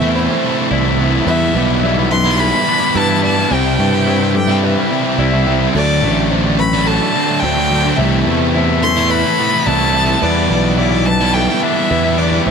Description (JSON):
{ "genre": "rock", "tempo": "107 BPM", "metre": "4/4", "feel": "straight", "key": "E minor", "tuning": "A4 = 440 Hz", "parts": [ { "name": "dark violin", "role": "melody", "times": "0.0-12.5 s", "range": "C5 to C6", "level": "-18 LUFS", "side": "left 1 dB", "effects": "analog delay" }, { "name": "ethereal airy pad", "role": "sustained chords", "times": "0.0-12.5 s", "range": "D4 to B5", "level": "-30 LUFS", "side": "right 1 dB", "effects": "none" }, { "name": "felt-muted upright piano", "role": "arpeggios", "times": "0.0-12.5 s", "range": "A4 to B5", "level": "-28 LUFS", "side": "right 6 dB", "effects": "analog delay" }, { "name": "twangy electric guitar", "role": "arpeggios", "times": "0.0-12.5 s", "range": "E2 to E4", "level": "-24 LUFS", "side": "left 5 dB", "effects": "analog delay" }, { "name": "sludgy distorted guitar", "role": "riff", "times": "0.0-12.5 s", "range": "C3 to E4", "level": "-19 LUFS", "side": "right 14 dB", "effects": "overdrive" }, { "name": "thick fuzz guitar", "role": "riff", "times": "0.0-12.5 s", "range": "C3 to E4", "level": "-19 LUFS", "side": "left 13 dB", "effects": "distortion" }, { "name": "fuzz picked electric bass", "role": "bass", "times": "0.0-12.5 s", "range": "A1 to G2", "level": "-17 LUFS", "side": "equal", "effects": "overdrive" } ], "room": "light reverb", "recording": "none", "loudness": "-12 LUFS", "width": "side -6 dB against mid", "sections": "0.0-12.5 A section", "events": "none", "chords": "0.0 Amadd9; 1.3 Em7; 3.5 Cmaj7; 5.8 D7sus4; 8.0 Amadd9/C; 10.2 Em7", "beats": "0.15 0.71 | 1.27 1.83 2.39 2.95 | 3.51 4.07 4.63 5.19 | 5.75 6.31 6.87 7.43 | 7.99 8.55 9.11 9.67 | 10.23 10.79 11.35 11.91 | 12.47" }